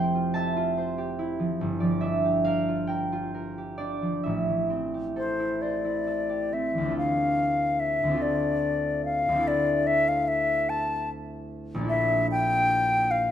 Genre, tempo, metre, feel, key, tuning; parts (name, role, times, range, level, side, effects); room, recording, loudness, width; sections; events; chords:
classical, impressionist duo for flute and harp; 44-50 BPM (dotted quarters); 6/8; rubato; D minor; A4 = 439 Hz
concert harp; accompaniment; 0.0-13.3 s; F1 to C6; -27 LUFS; right 1 dB
concert flute; melody; 5.2-13.3 s; C5 to A5; -24 LUFS; left 2 dB
moderate recital hall reverb, RT60 1.5 s; close, detailed microphones; -24 LUFS; side -10 dB against mid
0.0-7.0 A section; 7.0-13.3 B section
0.0 Fmaj9; 1.6 Gm7; 4.2 Am7; 7.0 Dm7; 9.4 C69/D; 11.9 Bbmaj7#11